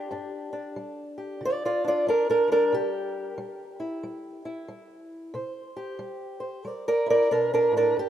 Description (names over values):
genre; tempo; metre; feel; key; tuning
acoustic country blues, solo or duo; 92 BPM; 4/4; swing 63% on 8ths; unclear; A4 = 441 Hz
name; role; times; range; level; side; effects
fingerpicked old ladder-braced acoustic guitar; solo; 0.0-8.1 s; G2 to D5; -25 LUFS; right 1 dB; none
room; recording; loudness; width
moderate plate reverb, RT60 2.8 s; rough home demo mix; -23 LUFS; side -10 dB against mid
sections
0.0-8.1 A section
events
steel-string acoustic guitar solo 0.0-8.1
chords
0.0 G5; 2.7 C